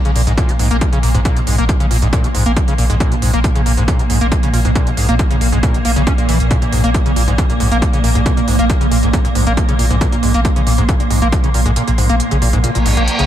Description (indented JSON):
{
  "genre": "driving peak-time techno",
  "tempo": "137 BPM",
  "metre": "4/4",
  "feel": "straight",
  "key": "Bb minor",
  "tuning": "A4 = 440 Hz",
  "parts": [
    { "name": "swarming drone", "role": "drone", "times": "0.2-13.3 s", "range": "Bb2 to Bb3", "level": "-21 LUFS", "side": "right 2 dB", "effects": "built-in reverb, sidechain pumping" },
    { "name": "overdriven acid bass", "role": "riff", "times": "0.1-13.2 s", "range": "Ab2 to Db4", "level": "-18 LUFS", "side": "equal", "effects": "distortion, analog chorus, sidechain pumping, diffuse ambient delay" },
    { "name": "saturated sub bass", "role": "bass", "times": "0.1-13.3 s", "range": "Bb1", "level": "-17 LUFS", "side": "equal", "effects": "overdrive, sidechain pumping, low-pass filter" },
    { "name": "electronic hi-hat", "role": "drums", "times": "0.1-13.3 s", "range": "none", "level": "-25 LUFS", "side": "right 3 dB", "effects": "sidechain pumping on hats, sidechain pumping on cymbals" },
    { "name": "electronic kick drum", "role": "drums", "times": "0.4-11.4 s", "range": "none", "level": "-16 LUFS", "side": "equal", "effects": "none" },
    { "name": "reverse cymbal", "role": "sound effects", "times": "12.8-13.3 s", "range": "none", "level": "-18 LUFS", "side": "equal", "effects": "none" }
  ],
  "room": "light reverb, digital ambience",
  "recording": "none",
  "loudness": "-12 LUFS",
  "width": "side -11 dB against mid",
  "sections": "0.0-13.3 A section",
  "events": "kick drops out 11.8-13.3; reverse cymbal 12.8-13.3",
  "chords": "none",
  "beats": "0.38 0.81 | 1.25 1.69 2.13 2.56 | 3.00 3.44 3.88 4.32 | 4.75 5.19 5.63 6.07 | 6.51 6.95 7.38 7.82 | 8.26 8.70 9.13 9.57 | 10.01 10.45 10.89 11.32 | 11.76 12.20 12.64 13.08"
}